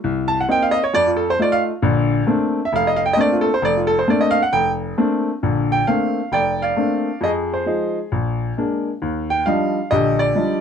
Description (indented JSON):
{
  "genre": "solo jazz",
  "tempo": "134 BPM",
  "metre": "4/4",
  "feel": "swing 66% on 8ths",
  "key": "Bb major",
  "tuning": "A4 = 441 Hz",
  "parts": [
    { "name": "clear upright piano", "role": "solo", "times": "0.0-10.6 s", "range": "F1 to A5", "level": "-16 LUFS", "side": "equal", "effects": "none" }
  ],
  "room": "light reverb",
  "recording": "dark, warm production",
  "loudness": "-16 LUFS",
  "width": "side -7 dB against mid",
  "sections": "0.0-5.4 A section; 5.4-10.6 B section",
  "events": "upright piano solo 0.0-5.4",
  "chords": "0.0 Cm7; 0.9 F7; 1.8 Bbmaj9; 7.2 Fm7; 8.1 Bb7; 9.0 Ebmaj9",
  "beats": "| 0.04 0.49 0.94 1.38 | 1.83 2.28 2.73 3.18 | 3.63 4.08 4.52 4.97 | 5.42 5.87 6.32 6.77 | 7.22 7.67 8.12 8.56 | 9.01 9.46 9.91 10.36"
}